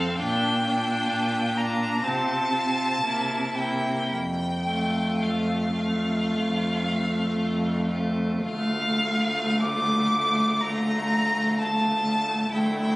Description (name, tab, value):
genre	classical, slow romantic movement for string quartet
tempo	51-66 BPM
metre	4/4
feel	rubato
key	F major, D minor from 8.5 s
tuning	A4 = 439 Hz
part	clear violin	melody	0.0-13.0 s	F5 to D6	-26 LUFS	equal	none
part	clear violin	second line	0.0-13.0 s	E4 to A4	-33 LUFS	left 1 dB	none
part	rich viola	accompaniment	0.0-13.0 s	A3 to D4	-28 LUFS	equal	none
part	rich cello	bass	0.0-13.0 s	D2 to C3	-28 LUFS	equal	none
room	moderate recital hall reverb, RT60 1.4 s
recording	recorded on a phone in the room, studio reverb, compression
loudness	-22 LUFS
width	side -21 dB against mid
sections	0.0-8.5 A section; 8.5-13.0 B section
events	none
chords	0.2 Gm7/Bb; 2.1 F/C; 3.0 C7; 4.1 F; 8.5 Dm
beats	| 0.19 1.12 2.05 3.04 | 4.11 5.22 6.32 7.40 | 8.48 9.60 10.61 11.58 | 12.53